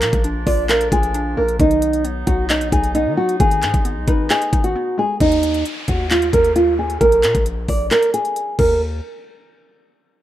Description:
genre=hip hop, trap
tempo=133 BPM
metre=4/4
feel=half-time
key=unclear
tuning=A4 = 437 Hz
part: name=flamenco guitar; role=melody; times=0.0-8.8 s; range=D#4 to D5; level=-17 LUFS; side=right 1 dB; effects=low-pass filter
part: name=hollow square pluck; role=accompaniment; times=0.0-5.2 s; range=D#3 to F5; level=-28 LUFS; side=left 3 dB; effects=chorus
part: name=warm woodwind section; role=sustained chords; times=0.0-5.2 s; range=F3 to D#4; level=-30 LUFS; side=right 2 dB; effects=none
part: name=hard-hitting 808-style bass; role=bass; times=0.0-9.0 s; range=Ab1 to D#3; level=-23 LUFS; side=equal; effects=none
part: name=trap drum kit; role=drums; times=0.0-8.7 s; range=crash cymbal, handclaps, hi-hat, kick drum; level=-20 LUFS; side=equal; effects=overdrive
part: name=downlifter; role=sound effects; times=5.2-8.8 s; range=none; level=-33 LUFS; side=equal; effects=none
room=little or no reverb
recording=rough home demo mix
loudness=-15 LUFS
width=side -13 dB against mid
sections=0.0-5.2 A section; 5.2-8.8 B section; 8.8-10.2 C section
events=break 4.8-5.2; filter sweep on nylon-string guitar 5.2-8.8; kick muted 7.9-8.8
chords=0.0 Bb; 1.6 B; 3.4 Abm; 5.2 N.C.; 7.0 Bb7(no3); 8.6 Eb5; 8.8 N.C.

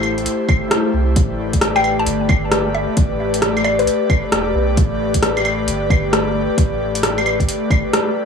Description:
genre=future garage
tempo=133 BPM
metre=4/4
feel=swing 64% on 16ths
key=unclear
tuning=A4 = 440 Hz
part: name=airy breathy pad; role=sustained chords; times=0.0-8.2 s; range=A3 to D5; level=-20 LUFS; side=left 1 dB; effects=chorus, sidechain pumping
part: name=warm sub bass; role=bass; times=0.0-7.5 s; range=E1 to C2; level=-24 LUFS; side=equal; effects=none
part: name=deep house drum kit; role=drums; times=0.0-8.0 s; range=claves, hi-hat, rim click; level=-19 LUFS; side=equal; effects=overdrive
part: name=electronic kick drum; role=drums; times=0.5-7.8 s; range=none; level=-16 LUFS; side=equal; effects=overdrive
part: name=mallet-like synth pluck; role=melody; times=1.8-4.1 s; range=B4 to A5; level=-22 LUFS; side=left 3 dB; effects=chorus, phaser, analog delay
room=little or no reverb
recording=dry, gritty hardware recording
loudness=-15 LUFS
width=side -6 dB against mid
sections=0.0-8.2 A section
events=kick drops out 7.9-8.2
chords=0.0 Am7; 1.2 Gadd9

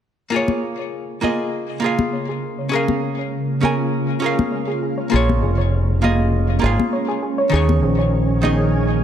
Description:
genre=sunset chillout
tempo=100 BPM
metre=4/4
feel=straight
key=Bb minor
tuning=A4 = 439 Hz
part: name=archtop guitar, miked and amplified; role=accompaniment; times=0.3-9.0 s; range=Eb3 to Ab5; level=-21 LUFS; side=right 1 dB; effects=auto-pan, ping-pong delay
part: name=shimmering ambient pad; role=sustained chords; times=1.8-9.0 s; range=Db3 to Ab4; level=-24 LUFS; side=right 1 dB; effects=chorus, built-in reverb
part: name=soft round pluck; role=arpeggios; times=0.3-8.6 s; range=Ab4 to F5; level=-28 LUFS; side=right 2 dB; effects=lush chorus, ping-pong delay
part: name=congas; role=percussion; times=0.5-8.6 s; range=none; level=-23 LUFS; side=left 5 dB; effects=none
part: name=fingered electric bass with an envelope filter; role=bass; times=5.1-9.0 s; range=F1 to Eb2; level=-18 LUFS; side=equal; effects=tube saturation
room=moderate plate reverb, RT60 2.7 s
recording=none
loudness=-17 LUFS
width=side -9 dB against mid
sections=0.3-9.0 A section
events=filter sweep on ambient pad 0.3-9.0; filter sweep on synth pluck 0.3-9.0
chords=0.3 Bbm7; 2.7 Db6; 5.1 Bbm7; 7.5 Eb7sus4

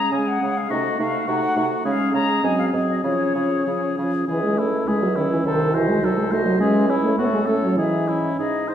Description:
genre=quick classical-period movement for wind quintet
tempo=95-106 BPM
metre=2/4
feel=rubato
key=Db major, C# minor from 4.3 s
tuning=A4 = 440 Hz
part: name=bright concert flute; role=melody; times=0.0-8.7 s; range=A4 to Bb5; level=-27 LUFS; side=left 4 dB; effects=none
part: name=mellow oboe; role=second line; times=0.0-8.7 s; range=E4 to C5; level=-27 LUFS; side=left 3 dB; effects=none
part: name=mellow French horn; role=accompaniment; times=0.0-8.4 s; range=Eb3 to C#4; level=-23 LUFS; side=equal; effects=none
part: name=mellow clarinet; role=accompaniment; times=0.0-8.7 s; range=A3 to Gb4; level=-25 LUFS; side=right 3 dB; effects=none
part: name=warm bassoon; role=bass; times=0.1-8.7 s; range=C2 to Db3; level=-27 LUFS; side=right 3 dB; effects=none
room=wet recital hall reverb, RT60 1.4 s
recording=heard from further back in the room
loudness=-18 LUFS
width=side -10 dB against mid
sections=0.0-4.3 A section; 4.3-8.7 B section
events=none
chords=0.0 Db5; 0.7 Cdim7; 1.9 Db; 2.4 Ab7; 3.0 Db; 4.3 C#m; 5.5 Cdim7; 6.6 C#m; 7.2 F#m/A; 7.8 C#m/G#

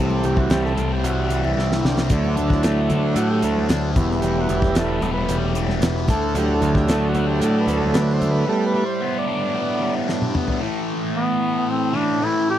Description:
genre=psychedelic rock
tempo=113 BPM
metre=4/4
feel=straight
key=A dorian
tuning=A4 = 439 Hz
part: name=overdriven combo organ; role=sustained chords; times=0.0-9.9 s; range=E3 to D5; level=-22 LUFS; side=right 2 dB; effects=none
part: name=thick fuzz guitar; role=riff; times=0.0-12.6 s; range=E2 to D4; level=-24 LUFS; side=left 1 dB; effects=distortion, phaser
part: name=growling picked electric bass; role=bass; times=0.0-8.4 s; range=E1 to A2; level=-23 LUFS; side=equal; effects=overdrive
part: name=pedal harmonium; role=drone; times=0.0-10.7 s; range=A2 to A3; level=-31 LUFS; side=left 1 dB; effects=none
part: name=congas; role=percussion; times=0.1-8.3 s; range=none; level=-32 LUFS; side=left 2 dB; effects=none
part: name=damped 70s drum kit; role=drums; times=0.2-10.6 s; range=hi-hat, kick drum, snare drum, toms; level=-22 LUFS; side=equal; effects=none
part: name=clear duduk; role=melody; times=11.1-12.6 s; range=B3 to G4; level=-20 LUFS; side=left 1 dB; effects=none
room=light reverb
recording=dry, close 1970s-style studio recording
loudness=-18 LUFS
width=side -11 dB against mid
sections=0.0-10.6 A section; 10.6-12.6 B section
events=transistor combo organ solo 0.0-10.6; drum fill 1.6-2.1, 10.1-10.6; break 8.5-10.6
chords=0.0 C; 2.1 D; 4.0 Em; 6.1 D; 8.5 Gadd9; 10.6 Asus2

